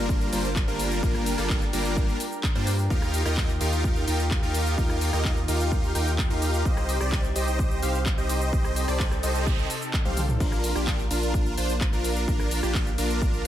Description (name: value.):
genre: EDM, festival progressive house.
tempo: 128 BPM.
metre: 4/4.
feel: straight.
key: unclear.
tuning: A4 = 440 Hz.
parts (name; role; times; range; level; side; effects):
lush unison pad; sustained chords; 0.0-13.5 s; C3 to Bb4; -34 LUFS; equal; chorus, sidechain pumping.
supersaw chords; riff; 0.0-13.4 s; G3 to G5; -28 LUFS; equal; sidechain pumping, tape echo.
saturated sub bass; bass; 0.0-13.4 s; G1 to G2; -28 LUFS; equal; sidechain pumping.
electronic kick drum; drums; 0.1-13.3 s; none; -26 LUFS; equal; none.
house drum kit; drums; 0.1-13.4 s; crash cymbal, handclaps, hi-hat, rim click, shaker, toms; -33 LUFS; left 1 dB; none.
noise sweep; sound effects; 9.2-10.4 s; none; -38 LUFS; right 6 dB; none.
room: light reverb.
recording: none.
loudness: -23 LUFS.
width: side -12 dB against mid.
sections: 0.0-13.5 A section.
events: noise sweep 9.2-10.4; drum fill 10.1-10.4.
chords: 0.0 Gm7; 2.9 Ebadd9; 6.7 Cm; 10.4 Bb.